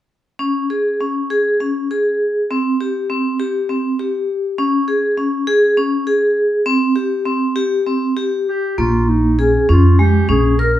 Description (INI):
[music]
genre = contemporary instrumental, chamber music in an uneven meter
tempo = 200 BPM (eighths)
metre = 7/8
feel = straight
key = unclear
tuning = A4 = 440 Hz
[part]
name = vibraphone with hard mallets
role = arpeggios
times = 0.4-10.8 s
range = Ab3 to Bb4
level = -16 LUFS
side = equal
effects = none
[part]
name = dark clarinet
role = melody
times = 8.5-10.8 s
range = Db4 to Bb4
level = -18 LUFS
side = equal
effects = none
[part]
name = upright bass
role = bass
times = 8.8-10.8 s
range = Bb1 to F2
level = -14 LUFS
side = right 1 dB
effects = none
[sound]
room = wet studio reverb, RT60 0.8 s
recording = heard from further back in the room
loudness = -14 LUFS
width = side -12 dB against mid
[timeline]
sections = 0.4-8.8 A section; 8.8-10.8 B section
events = none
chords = 0.4 Db5; 2.5 C5; 4.6 Db5; 6.7 C5; 8.8 Bbm7